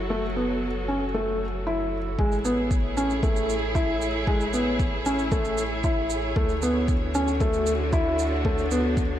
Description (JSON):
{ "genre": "piano and strings electronica", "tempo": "115 BPM", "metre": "4/4", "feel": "straight", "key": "A major", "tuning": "A4 = 439 Hz", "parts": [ { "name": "rich chamber string section", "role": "sustained chords", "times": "0.0-9.2 s", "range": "D3 to C#5", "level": "-30 LUFS", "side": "equal", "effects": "sidechain pumping" }, { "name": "round analog bass", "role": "bass", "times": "0.0-9.2 s", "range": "F#1 to D2", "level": "-31 LUFS", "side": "equal", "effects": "sidechain pumping" }, { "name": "felt-muted upright piano", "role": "riff", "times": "0.1-9.0 s", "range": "G#3 to E4", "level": "-26 LUFS", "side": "equal", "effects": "tape echo" }, { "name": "electronic kick drum", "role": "drums", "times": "2.2-9.1 s", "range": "none", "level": "-25 LUFS", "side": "equal", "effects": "none" }, { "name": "shaker", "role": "drums", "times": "2.3-9.1 s", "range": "none", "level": "-38 LUFS", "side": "right 9 dB", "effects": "none" } ], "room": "moderate lush hall reverb, RT60 1.9 s", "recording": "dark, warm production", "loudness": "-22 LUFS", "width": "side -11 dB against mid", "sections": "0.0-2.2 A section; 2.2-9.2 B section", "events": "build-up 2.2-9.2", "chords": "0.0 F#m; 2.2 Amaj7; 6.4 Dmaj7" }